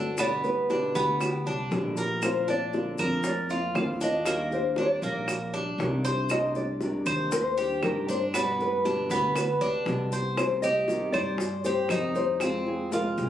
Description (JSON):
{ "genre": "latin, Cuban son and guajira", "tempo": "118 BPM", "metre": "4/4", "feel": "straight", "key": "C minor", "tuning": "A4 = 439 Hz", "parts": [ { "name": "nylon-string guitar", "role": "melody", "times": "0.0-13.3 s", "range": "G4 to F5", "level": "-29 LUFS", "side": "left 1 dB", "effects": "plate reverb" }, { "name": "nylon-string guitar", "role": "accompaniment", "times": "0.0-13.3 s", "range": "B2 to G4", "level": "-33 LUFS", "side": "left 1 dB", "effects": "none" }, { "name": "Cuban tres", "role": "arpeggios", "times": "0.0-13.3 s", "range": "Bb3 to C5", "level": "-31 LUFS", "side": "right 1 dB", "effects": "none" }, { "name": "upright bass", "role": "bass", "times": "0.0-13.3 s", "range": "G1 to G2", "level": "-33 LUFS", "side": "right 1 dB", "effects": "none" }, { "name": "bongos", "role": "percussion", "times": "0.2-13.2 s", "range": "none", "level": "-35 LUFS", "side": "left 1 dB", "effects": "none" }, { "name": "claves", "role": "percussion", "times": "0.2-12.7 s", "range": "none", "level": "-33 LUFS", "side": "right 4 dB", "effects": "none" }, { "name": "maracas", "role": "percussion", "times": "0.2-13.3 s", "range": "none", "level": "-42 LUFS", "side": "left 4 dB", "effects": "none" } ], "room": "moderate studio reverb, RT60 0.8 s", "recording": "recorded on a phone in the room, club reverb", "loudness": "-25 LUFS", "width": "side -11 dB against mid", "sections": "0.0-10.4 A section; 10.4-13.3 B section", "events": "none", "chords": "0.2 G; 2.2 Bbadd9; 4.3 Ebmaj7; 6.3 Cmadd9; 8.3 G; 10.4 Cm; 12.4 Fm" }